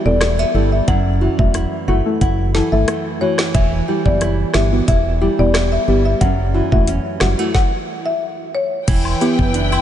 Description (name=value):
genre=dancehall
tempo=90 BPM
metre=4/4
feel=straight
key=E dorian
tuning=A4 = 440 Hz
part: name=nylon-string guitar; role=arpeggios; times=0.0-9.8 s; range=F#2 to E4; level=-23 LUFS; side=right 5 dB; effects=none
part: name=marimba with medium mallets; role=melody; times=0.1-8.7 s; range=C#5 to F#5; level=-22 LUFS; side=left 3 dB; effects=diffuse ambient delay
part: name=deep mellow chord stab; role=accompaniment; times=0.1-9.4 s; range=A3 to A4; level=-21 LUFS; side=left 2 dB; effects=chorus, sidechain pumping
part: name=organ-like FM bass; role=bass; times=0.1-9.8 s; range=E1 to G1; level=-18 LUFS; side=equal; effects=none
part: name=island pop drum kit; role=drums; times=0.2-9.7 s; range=crash cymbal, hi-hat, kick drum, rim click, snare drum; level=-20 LUFS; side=equal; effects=none
part: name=warm studio string section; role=sustained chords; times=8.9-9.8 s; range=E4 to G5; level=-22 LUFS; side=left 2 dB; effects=sidechain pumping
part: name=woodblock and cabasa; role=percussion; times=9.1-9.8 s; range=none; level=-28 LUFS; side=left 8 dB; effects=none
room=moderate huge ambient reverb, RT60 4.6 s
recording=dreamy mix soaked in reverb, nothing above 10.6 kHz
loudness=-14 LUFS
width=side -10 dB against mid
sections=0.0-8.9 A section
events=stop 7.5-8.9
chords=0.0 Em; 0.9 F#m7; 3.5 Em; 6.2 F#m7; 8.9 Em